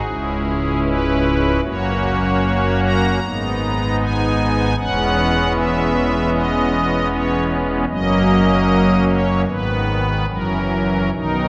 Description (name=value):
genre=classical, chorale-style piece for pipe organ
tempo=76 BPM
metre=4/4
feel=rubato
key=unclear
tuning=A4 = 440 Hz
part: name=pipe organ, strings celeste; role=solo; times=0.0-11.5 s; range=C#1 to A#5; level=-18 LUFS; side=equal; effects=none
room=wet church reverb, RT60 3.1 s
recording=none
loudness=-18 LUFS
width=mono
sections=0.0-11.5 A section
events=none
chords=0.1 C#m; 1.6 F#; 3.2 G#m; 4.8 C#m7/E; 7.9 F#; 9.5 G#m; 10.3 F#7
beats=0.06 0.85 | 1.64 2.43 3.23 4.00 | 4.78 5.55 6.33 7.11 | 7.89 8.69 9.48 10.29 | 11.13